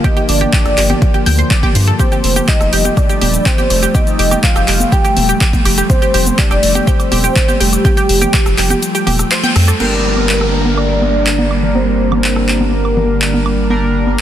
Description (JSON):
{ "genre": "progressive house", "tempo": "123 BPM", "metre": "4/4", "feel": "straight", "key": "G minor", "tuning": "A4 = 440 Hz", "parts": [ { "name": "warm velvety synth lead", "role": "melody", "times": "0.0-13.5 s", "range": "G4 to G5", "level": "-18 LUFS", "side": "equal", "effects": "chorus, tremolo, cassette tape, digital delay" }, { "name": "evolving wavetable pad", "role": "sustained chords", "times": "0.0-14.2 s", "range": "D3 to Bb3", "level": "-19 LUFS", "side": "left 1 dB", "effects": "chorus, built-in reverb, sidechain pumping" }, { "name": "analog pluck", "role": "arpeggios", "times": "0.0-9.7 s", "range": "G4 to G5", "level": "-20 LUFS", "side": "right 2 dB", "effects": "analog chorus, sidechain pumping, digital delay" }, { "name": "deep house drum kit", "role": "drums", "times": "0.0-13.3 s", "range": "crash cymbal, handclaps, hi-hat, rim click, shaker", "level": "-18 LUFS", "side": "left 1 dB", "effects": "sidechain pumping on hats, sidechain pumping on cymbals, sidechain pumping on perc" }, { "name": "electronic kick drum", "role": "drums", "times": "0.0-8.4 s", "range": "none", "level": "-13 LUFS", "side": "equal", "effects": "overdrive" }, { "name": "congas and woodblock", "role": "percussion", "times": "0.0-14.2 s", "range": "none", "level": "-21 LUFS", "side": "right 1 dB", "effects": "overdrive, sidechain pumping on perc" }, { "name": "saturated sub bass", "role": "bass", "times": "0.3-14.2 s", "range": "Eb1 to G2", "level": "-16 LUFS", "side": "equal", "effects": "sidechain pumping" }, { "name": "chorused polysynth", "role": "stabs", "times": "9.8-14.2 s", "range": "G3 to Bb4", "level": "-20 LUFS", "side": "right 4 dB", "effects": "sidechain pumping, digital delay" }, { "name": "downlifter", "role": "sound effects", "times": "9.8-13.7 s", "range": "none", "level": "-24 LUFS", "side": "equal", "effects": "none" } ], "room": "light reverb, digital ambience", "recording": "dense, heavily limited modern master", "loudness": "-10 LUFS", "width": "side -11 dB against mid", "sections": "0.0-9.8 A section; 9.8-14.2 B section", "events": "kick drops out 8.8-9.8; band accent 9.3", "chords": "0.0 Gm; 2.0 Fadd9; 9.8 Gm" }